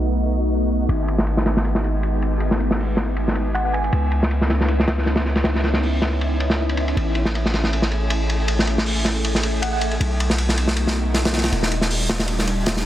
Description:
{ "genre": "drum and bass, jungle", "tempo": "158 BPM", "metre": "4/4", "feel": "swing 55% on 16ths", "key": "G# phrygian", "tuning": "A4 = 441 Hz", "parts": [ { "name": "soft string machine", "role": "sustained chords", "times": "0.0-12.9 s", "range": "G3 to G#4", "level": "-26 LUFS", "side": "equal", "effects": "ensemble chorus" }, { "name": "long sustained 808-style bass", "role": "bass", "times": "0.0-12.9 s", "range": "D#1 to C#2", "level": "-22 LUFS", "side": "equal", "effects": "none" }, { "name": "crunchy breakbeat drum kit", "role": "drums", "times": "0.9-12.8 s", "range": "hi-hat, ride cymbal, snare drum", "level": "-22 LUFS", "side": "equal", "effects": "none" }, { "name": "thumb-piano-like synth pluck", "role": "melody", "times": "3.5-4.0, 9.6-9.8 s", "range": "F#5 to G#5", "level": "-28 LUFS", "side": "right 1 dB", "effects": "chorus, dub echo" } ], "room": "light reverb, studio reverb", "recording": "dense, heavily limited modern master, low-pass filter", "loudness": "-18 LUFS", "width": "side -12 dB against mid", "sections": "0.0-12.9 A section", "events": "filter sweep on string machine 0.0-12.9; filter sweep 0.0-12.9", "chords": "0.0 B7; 0.9 G#m7; 3.9 C#m9; 7.0 Amaj7; 10.0 B7; 11.5 D#maj9", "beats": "0.13 0.51 | 0.89 1.27 1.65 2.03 | 2.41 2.79 3.17 3.55 | 3.93 4.31 4.69 5.07 | 5.45 5.83 6.21 6.59 | 6.96 7.34 7.72 8.11 | 8.48 8.86 9.24 9.62 | 10.00 10.38 10.76 11.14 | 11.52 11.90 12.28 12.66" }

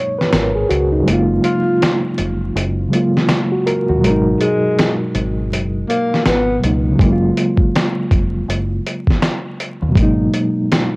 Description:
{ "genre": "lo-fi hip hop", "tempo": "81 BPM", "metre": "4/4", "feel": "swing 62% on 16ths", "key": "F# major", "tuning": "A4 = 440 Hz", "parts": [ { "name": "reed electric piano", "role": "accompaniment", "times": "0.0-11.0 s", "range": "B2 to C#5", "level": "-17 LUFS", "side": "equal", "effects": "fast tremolo, low-pass filter" }, { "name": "dusty soul sampler-style drum kit", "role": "drums", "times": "0.2-10.9 s", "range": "finger snaps, hi-hat, kick drum, snare drum", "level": "-17 LUFS", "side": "equal", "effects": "cassette tape" }, { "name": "deep dub fingered electric bass", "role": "bass", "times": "0.3-10.3 s", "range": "E#1 to D#2", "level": "-20 LUFS", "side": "equal", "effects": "none" }, { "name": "breathy tenor saxophone", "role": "melody", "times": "1.4-6.6 s", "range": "G#3 to E#4", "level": "-20 LUFS", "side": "left 1 dB", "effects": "low-pass filter, cassette tape" } ], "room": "little or no reverb", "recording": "home recording on cassette, vinyl crackle", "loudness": "-14 LUFS", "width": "side -27 dB against mid", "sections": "0.0-11.0 A section", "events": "break 0.0-7.0", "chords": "0.0 G#m7; 1.1 F#maj7; 4.0 G#m7; 7.0 F#maj7; 10.0 G#m7", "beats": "0.33 | 1.06 1.81 2.55 3.29 | 4.03 4.77 5.51 6.25 | 6.99 7.73 8.47 9.21 | 9.95 10.70" }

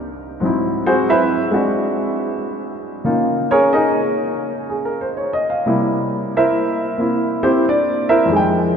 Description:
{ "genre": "solo jazz", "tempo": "91 BPM", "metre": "4/4", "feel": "swing 66% on 8ths", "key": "unclear", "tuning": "A4 = 441 Hz", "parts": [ { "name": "warm baby grand piano", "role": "solo", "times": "0.0-8.8 s", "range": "C2 to G5", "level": "-16 LUFS", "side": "equal", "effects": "none" } ], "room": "wet cathedral reverb, RT60 5.2 s", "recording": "recorded in a church or concert hall, nothing above 7.7 kHz", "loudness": "-15 LUFS", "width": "side -7 dB against mid", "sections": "0.0-8.8 A section", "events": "grand piano solo 0.0-8.8", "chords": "0.4 Ab7alt; 3.0 Db69; 5.7 C7", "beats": "| 0.41 1.07 1.72 2.38 | 3.04 3.70 4.35 5.01 | 5.67 6.33 6.99 7.64 | 8.30" }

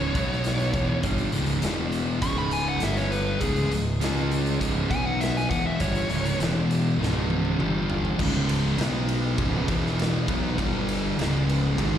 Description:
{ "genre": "stoner and doom metal", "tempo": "101 BPM", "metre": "4/4", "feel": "straight", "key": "C# minor", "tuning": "A4 = 440 Hz", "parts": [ { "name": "fuzz lead guitar", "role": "melody", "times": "0.0-6.4 s", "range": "G#4 to C#6", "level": "-30 LUFS", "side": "equal", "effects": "distortion, slapback echo, digital delay" }, { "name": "tonewheel organ", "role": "sustained chords", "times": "0.0-8.2 s", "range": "C#3 to C#5", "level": "-39 LUFS", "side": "right 1 dB", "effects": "none" }, { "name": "fuzz guitar", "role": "riff", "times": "0.0-12.0 s", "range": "C#2 to C#4", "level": "-32 LUFS", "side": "equal", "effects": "distortion, slapback echo" }, { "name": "thick fuzz guitar", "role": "riff", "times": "0.0-12.0 s", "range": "C#2 to C#4", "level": "-30 LUFS", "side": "left 8 dB", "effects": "distortion, slapback echo" }, { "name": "thick fuzz guitar", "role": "riff", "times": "0.0-12.0 s", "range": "C#2 to C#4", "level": "-29 LUFS", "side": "right 5 dB", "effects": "distortion" }, { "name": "fuzz fingered electric bass", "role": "bass", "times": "0.0-12.0 s", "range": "C#1 to C#2", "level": "-29 LUFS", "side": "equal", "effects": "overdrive" }, { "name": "raw garage drum kit", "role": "drums", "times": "0.2-11.9 s", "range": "crash cymbal, hi-hat, kick drum, ride cymbal, snare drum, toms", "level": "-30 LUFS", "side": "equal", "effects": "none" } ], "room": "little or no reverb", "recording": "live gig heard through the venue's PA, recital hall reverb", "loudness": "-22 LUFS", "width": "side -10 dB against mid", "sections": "0.0-8.2 A section; 8.2-12.0 B section", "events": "lead electric guitar solo 0.0-8.2; drum fill 7.0-8.2", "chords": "0.1 B5; 0.7 C#m; 1.6 E5; 2.2 C#5; 2.8 G5; 3.4 C#5; 4.9 B5; 5.5 C#m; 6.4 E5; 7.0 C#5; 7.6 G5; 8.2 C#5; 8.8 B5; 9.4 C#5; 9.7 E5; 10.3 B5; 10.6 G5; 11.2 C#5", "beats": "0.45 | 1.04 1.64 2.23 2.83 | 3.42 4.02 4.61 5.21 | 5.80 6.40 7.00 7.59 | 8.19 8.79 9.39 9.98 | 10.58 11.18 11.78" }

